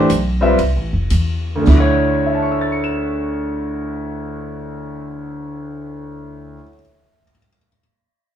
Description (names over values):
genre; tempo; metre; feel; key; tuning
modal jazz; 103-127 BPM; 4/4; swing 65% on 8ths; D major; A4 = 439 Hz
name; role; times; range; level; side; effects
clear concert grand piano; accompaniment; 0.0-7.8 s; D2 to E7; -18 LUFS; equal; none
upright bass; bass; 0.0-6.6 s; F1 to E2; -20 LUFS; equal; none
open jazz drum kit; drums; 0.1-1.9 s; china cymbal, hi-hat, kick drum, ride cymbal, snare drum; -21 LUFS; right 1 dB; none
room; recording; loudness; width
wet studio reverb, RT60 0.6 s; heard from further back in the room; -15 LUFS; side -10 dB against mid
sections
0.0-1.7 A section; 1.7-6.3 B section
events
slowing down 0.0-1.7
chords
0.0 Fmaj9; 1.7 Dmaj9